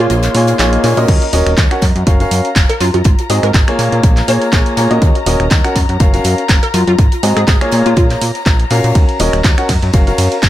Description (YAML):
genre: piano house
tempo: 122 BPM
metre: 4/4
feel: swing 55% on 16ths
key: Bb minor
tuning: A4 = 440 Hz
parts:
  - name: hollow square pluck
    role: melody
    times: 0.0-8.1 s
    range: F4 to Db5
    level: -20 LUFS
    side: equal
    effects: ensemble chorus, dub echo
  - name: muted chamber string section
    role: sustained chords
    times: 0.0-10.5 s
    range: Bb5 to C6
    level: -24 LUFS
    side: left 4 dB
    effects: sidechain pumping
  - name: clear upright piano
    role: riff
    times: 0.0-10.3 s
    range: Bb3 to Gb5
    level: -16 LUFS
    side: equal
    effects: sidechain pumping, dub echo
  - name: fat analog bass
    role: bass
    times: 0.0-10.5 s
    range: Eb1 to Bb2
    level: -15 LUFS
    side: equal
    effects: tube saturation, sidechain pumping
  - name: open jazz drum kit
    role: drums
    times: 0.1-10.5 s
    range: hi-hat, snare drum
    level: -30 LUFS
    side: left 2 dB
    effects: none
  - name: punchy analog drum machine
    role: drums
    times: 0.1-10.5 s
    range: crash cymbal, finger snaps, handclaps, hi-hat, ride cymbal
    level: -20 LUFS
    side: right 1 dB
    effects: dub echo
  - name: swell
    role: sound effects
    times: 0.3-1.1 s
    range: none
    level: -26 LUFS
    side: left 1 dB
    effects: none
  - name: electronic kick drum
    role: drums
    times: 1.1-10.5 s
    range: none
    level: -11 LUFS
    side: equal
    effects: overdrive
room: studio ambience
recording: echo-heavy mix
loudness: -10 LUFS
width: side -13 dB against mid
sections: 0.0-10.5 A section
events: kick drops out 0.1-1.1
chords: 0.0 Bbm7; 1.1 Ebm7; 1.8 Gbmaj7; 3.1 Ab7; 3.8 Bbm7; 5.0 Ebm7; 5.8 Gbmaj7; 7.0 Ab7; 7.7 Bbm7; 9.0 Ebm7; 9.7 Gbmaj7